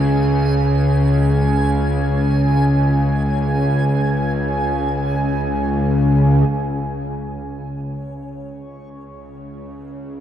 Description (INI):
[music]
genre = dark ambient drone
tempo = free time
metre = none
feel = none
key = unclear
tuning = A4 = 442 Hz
[part]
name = bowed-like drone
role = drone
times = 0.0-10.2 s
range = C#2 to C#3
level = -17 LUFS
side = equal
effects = built-in reverb
[part]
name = backwards swelling texture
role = texture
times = 0.0-10.2 s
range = C#5 to G#5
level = -27 LUFS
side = right 2 dB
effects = built-in reverb
[sound]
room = wet cathedral reverb, RT60 6.0 s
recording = cassette tape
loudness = -15 LUFS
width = side -10 dB against mid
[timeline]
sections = 0.0-6.5 A section; 6.5-10.2 B section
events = none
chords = 0.0 C#5; 6.5 N.C.